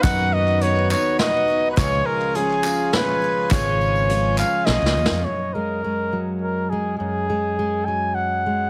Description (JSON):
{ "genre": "indie folk with a building arrangement", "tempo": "103 BPM", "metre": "3/4", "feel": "straight", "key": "unclear", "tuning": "A4 = 440 Hz", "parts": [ { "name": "mellow trumpet", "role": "melody", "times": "0.0-8.7 s", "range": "Ab4 to Ab5", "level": "-24 LUFS", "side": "equal", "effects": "tape echo" }, { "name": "dark concert grand piano", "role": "accompaniment", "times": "0.0-5.3 s", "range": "Db2 to D#5", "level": "-32 LUFS", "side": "equal", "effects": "none" }, { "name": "picked twelve-string acoustic guitar", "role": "accompaniment", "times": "0.0-5.3 s", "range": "Db3 to F#4", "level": "-32 LUFS", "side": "equal", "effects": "subtle chorus" }, { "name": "hand-pumped harmonium", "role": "sustained chords", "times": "0.0-5.2 s", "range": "D#4 to Ab5", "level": "-34 LUFS", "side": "equal", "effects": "none" }, { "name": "mellow fretless electric bass", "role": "bass", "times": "0.0-5.2 s", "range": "Ab1 to F#2", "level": "-24 LUFS", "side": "equal", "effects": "none" }, { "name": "vintage brush drum kit", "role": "drums", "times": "0.0-5.2 s", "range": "hi-hat, kick drum, snare drum", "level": "-25 LUFS", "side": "equal", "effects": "none" }, { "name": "group handclap", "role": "percussion", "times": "0.0-4.9 s", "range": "none", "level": "-35 LUFS", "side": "equal", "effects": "none" }, { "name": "tambourine", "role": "percussion", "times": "0.0-5.2 s", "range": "none", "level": "-40 LUFS", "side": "equal", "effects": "none" }, { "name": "fingerpicked plugged-in steel-string acoustic guitar", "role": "accompaniment", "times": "5.3-8.7 s", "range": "Gb2 to Ab3", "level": "-27 LUFS", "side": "equal", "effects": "none" } ], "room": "light reverb, small room reverb", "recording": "heavily compressed radio sound", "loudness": "-21 LUFS", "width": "mono", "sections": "0.0-5.3 A section; 5.3-8.7 B section", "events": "drum fill 4.7-5.3", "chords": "0.0 B/D#; 1.8 Db; 5.3 Gbadd9" }